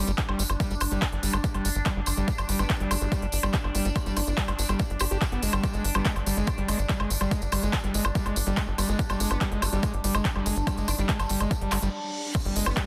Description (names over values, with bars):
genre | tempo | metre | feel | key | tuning
psychedelic trance | 143 BPM | 4/4 | straight | G major | A4 = 440 Hz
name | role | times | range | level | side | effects
vowel-sweep wobble bass | second line | 0.0-0.1, 2.6-12.8 s | G3 to D4 | -44 LUFS | equal | none
overtone-sweeping drone | sustained chords | 0.0-12.9 s | D4 | -38 LUFS | equal | chorus, built-in reverb, phaser, sidechain pumping
screaming distorted acid line | riff | 0.0-12.9 s | G3 to G4 | -34 LUFS | equal | distortion, chorus, sidechain pumping, delay
tight sequencer bass | bass | 0.0-12.7 s | G1 | -31 LUFS | equal | none
big-room dance drum kit | drums | 0.1-12.9 s | crash cymbal, handclaps, hi-hat, woodblock | -33 LUFS | equal | overdrive
tambourine | percussion | 0.1-12.9 s | none | -40 LUFS | equal | none
electronic kick drum | drums | 0.2-12.9 s | none | -30 LUFS | equal | overdrive
reverse cymbal and downlifter | sound effects | 11.7-12.9 s | none | -40 LUFS | equal | none
room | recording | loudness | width
light reverb | dense, heavily limited modern master | -27 LUFS | mono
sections
0.0-12.3 A section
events
reverse cymbal 11.8-12.3; stop 11.9-12.3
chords
0.0 G5